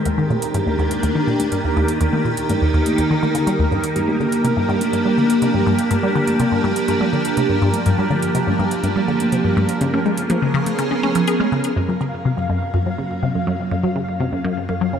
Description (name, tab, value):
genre	ambient, sequencer-driven space music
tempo	123 BPM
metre	4/4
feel	straight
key	G phrygian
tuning	A4 = 440 Hz
part	pulsing gated texture	texture	0.0-15.0 s	Bb4 to F5	-27 LUFS	right 1 dB	chorus, built-in reverb, shimmer reverb
part	evolving wavetable pad	sustained chords	0.1-15.0 s	Eb3 to G#4	-20 LUFS	right 1 dB	ensemble chorus, built-in reverb, phaser, shimmer reverb
part	resonant blip pluck	riff	0.1-15.0 s	Eb2 to G#4	-20 LUFS	left 1 dB	chorus, phaser, ping-pong delay
part	electronic hi-hat and congas	percussion	0.1-11.7 s	none	-28 LUFS	left 1 dB	ping-pong delay
part	analog drone	bass	12.7-15.0 s	Gb2	-28 LUFS	equal	chorus
room	wet concert hall reverb, RT60 2.2 s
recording	none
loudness	-16 LUFS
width	side -8 dB against mid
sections	0.0-11.8 A section; 11.8-15.0 B section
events	none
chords	0.1 Ebmaj7; 4.0 Gm7; 9.8 C#7; 11.8 Gbmaj7